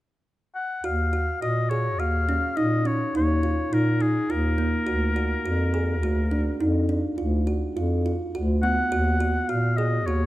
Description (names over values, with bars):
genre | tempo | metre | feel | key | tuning
contemporary instrumental, contemporary | 104 BPM | 7/4 | straight | Eb minor | A4 = 440 Hz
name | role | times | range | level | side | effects
warm oboe | melody | 0.6-10.3 s | Ab4 to Gb5 | -28 LUFS | left 2 dB | none
kalimba | arpeggios | 0.8-10.3 s | Bb3 to Ab4 | -26 LUFS | right 1 dB | none
breathy bass clarinet | bass | 0.8-10.3 s | D2 to Bb2 | -24 LUFS | equal | none
room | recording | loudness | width
light reverb | dark, warm production | -22 LUFS | side -16 dB against mid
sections
0.8-10.3 A section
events
none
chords
0.0 N.C.; 0.8 Ebm7; 4.9 Bb(b13)/D; 8.9 Ebmadd9